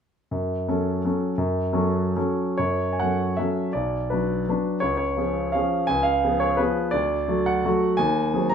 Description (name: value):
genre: classical, romantic triple-time dance for piano with dotted rhythms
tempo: 128-184 BPM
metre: 3/4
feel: rubato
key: F# minor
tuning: A4 = 439 Hz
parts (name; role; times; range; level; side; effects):
- warm grand piano; solo; 0.3-8.5 s; B1 to A#5; -21 LUFS; equal; none
room: wet large studio reverb, RT60 0.8 s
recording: heard from further back in the room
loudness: -21 LUFS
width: side -7 dB against mid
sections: 0.3-2.6 A section; 2.6-8.5 B section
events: none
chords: 0.3 F#m; 3.7 Bm; 4.8 C#; 5.9 C#7; 6.9 D; 8.0 G#7/D#